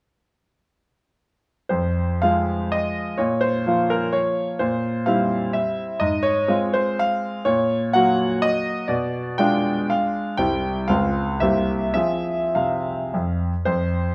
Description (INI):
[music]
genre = classical, romantic triple-time dance for piano with dotted rhythms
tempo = 94-134 BPM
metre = 3/4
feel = rubato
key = F minor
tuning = A4 = 439 Hz
[part]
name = bright concert grand piano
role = solo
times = 1.7-14.1 s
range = C2 to G5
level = -22 LUFS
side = equal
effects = none
[sound]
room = moderate stone room reverb, RT60 1.1 s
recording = none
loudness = -22 LUFS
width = mono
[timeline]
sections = 1.7-13.7 A section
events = none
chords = 1.7 Fm; 3.2 Bbm; 4.6 C7/Bb; 6.0 Fm/Ab; 7.5 Gb/Bb; 8.9 Bdim7; 10.4 C; 10.9 Dbmaj7; 11.4 C7; 11.9 Fm